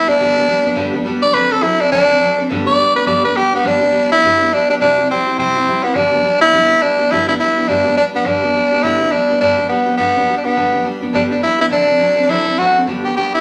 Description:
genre	rock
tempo	208 BPM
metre	4/4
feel	swing 60% on 8ths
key	G major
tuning	A4 = 436 Hz
part	raspy tenor saxophone	melody	0.0-13.4 s	B3 to D5	-15 LUFS	equal	none
part	picked steel-string acoustic guitar	accompaniment	0.0-13.4 s	G2 to A4	-22 LUFS	equal	none
room	moderate large studio reverb, RT60 1.1 s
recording	none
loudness	-14 LUFS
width	mono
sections	0.0-3.6 A section; 3.6-12.9 B section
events	tenor saxophone solo 0.0-3.6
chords	0.0 G; 1.3 D7; 2.5 G; 4.8 C; 6.0 G; 11.7 D7; 12.9 G

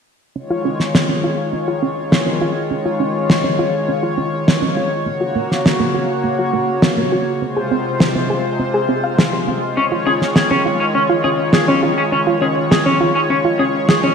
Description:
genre	synthwave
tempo	102 BPM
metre	4/4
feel	straight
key	Db major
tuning	A4 = 440 Hz
part	chorused pulse-width pad	sustained chords	0.4-14.1 s	C3 to Db5	-19 LUFS	left 1 dB	none
part	soft round pluck	arpeggios	0.4-14.1 s	Bb3 to F5	-20 LUFS	right 1 dB	chorus, ping-pong delay
part	snare drum	drums	0.8-14.0 s	none	-16 LUFS	equal	small room ambience, gated reverb
part	clean electric guitar	riff	9.8-14.1 s	Db4 to Ab4	-19 LUFS	left 1 dB	wide subtle chorus, ping-pong delay
room	wet lush hall reverb, RT60 2.0 s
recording	bright 1980s-style digital production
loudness	-14 LUFS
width	side -6 dB against mid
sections	0.4-14.1 A section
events	filter sweep on synth arpeggio sound 0.4-14.1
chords	0.4 Dbadd9; 5.1 Gb; 7.4 Fm; 9.8 Dbadd9

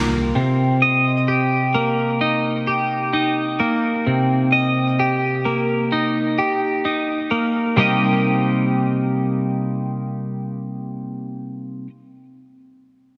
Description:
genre	rock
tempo	65 BPM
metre	4/4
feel	straight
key	C minor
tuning	A4 = 438 Hz
part	twelve-string electric guitar	arpeggios	0.0-11.9 s	C3 to Eb5	-20 LUFS	equal	subtle chorus, analog delay, slapback echo
room	wet lush hall reverb, RT60 2.9 s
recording	big arena sound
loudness	-20 LUFS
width	mono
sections	0.0-7.8 A section; 7.8-11.5 B section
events	none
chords	0.4 Cm7

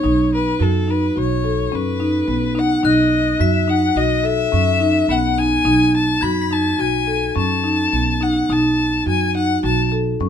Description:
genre	contemporary instrumental, chamber music in an uneven meter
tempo	106 BPM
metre	5/4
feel	straight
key	B mixolydian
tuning	A4 = 438 Hz
part	rich violin	melody	0.0-9.9 s	A4 to B5	-21 LUFS	left 6 dB	none
part	marimba with medium mallets	arpeggios	0.0-10.3 s	B3 to A4	-18 LUFS	left 1 dB	none
part	upright bass	bass	0.0-10.3 s	B1 to F#2	-22 LUFS	right 4 dB	none
part	glockenspiel with brass mallets	texture	2.8-6.9 s	F#6 to B6	-28 LUFS	left 6 dB	none
room	moderate studio reverb, RT60 0.6 s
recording	none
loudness	-15 LUFS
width	side -8 dB against mid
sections	0.0-10.3 A section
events	none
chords	0.0 B7

